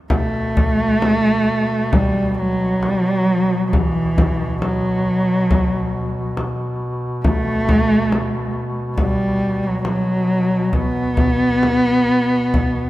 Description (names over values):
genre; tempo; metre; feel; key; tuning
caucasian folk, Caucasian lament; 68 BPM; 4/4; uneven beats, rubato; unclear; A4 = 440 Hz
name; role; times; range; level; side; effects
dark cello; melody; 0.1-12.9 s; E3 to B3; -17 LUFS; equal; none
warm duduk; drone; 0.1-12.9 s; B2; -25 LUFS; equal; none
frame drum; percussion; 0.1-12.7 s; none; -21 LUFS; equal; none
room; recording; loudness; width
wet church reverb, RT60 3.0 s; none; -16 LUFS; side -16 dB against mid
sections
0.0-12.9 A section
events
none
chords
none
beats
| 0.11 1.03 1.94 2.84 | 3.74 4.63 5.51 6.37 | 7.24 8.11 8.97 9.84 | 10.73 11.63 12.53